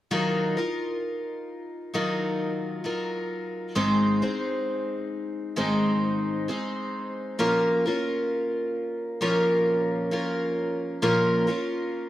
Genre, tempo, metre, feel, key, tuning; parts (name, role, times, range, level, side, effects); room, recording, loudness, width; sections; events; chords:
folk; 66 BPM; 4/4; straight; A4 = 440 Hz
picked twelve-string acoustic guitar; accompaniment; 0.1-12.1 s; Ab2 to C5; -24 LUFS; equal
moderate studio reverb, RT60 0.6 s; -24 LUFS; side -14 dB against mid
0.1-12.1 A section
0.1 Ebmadd9; 3.8 Ab; 7.4 Bbm